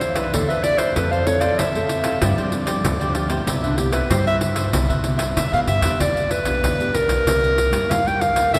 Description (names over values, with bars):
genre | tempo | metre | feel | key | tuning
samba and choro | 95 BPM | 4/4 | straight | C major | A4 = 439 Hz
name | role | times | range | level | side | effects
warm clarinet | melody | 0.0-8.6 s | D4 to G5 | -24 LUFS | equal | none
cavaquinho | accompaniment | 0.0-6.0 s | E4 to F5 | -30 LUFS | equal | none
nylon-string guitar | accompaniment | 0.0-8.6 s | G2 to A4 | -30 LUFS | equal | none
upright bass | bass | 0.0-8.6 s | B1 to G3 | -26 LUFS | equal | none
pandeiro | percussion | 0.0-8.6 s | none | -27 LUFS | equal | none
room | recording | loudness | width
wet cathedral reverb, RT60 5.2 s | recorded in a church or concert hall | -20 LUFS | mono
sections
0.0-6.0 A section; 6.0-8.6 B section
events
clarinet solo 0.0-6.0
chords
0.0 Cmaj9/E; 1.0 Fmaj7; 2.2 G7sus4; 3.5 Cmaj7; 6.0 Em7; 7.3 C7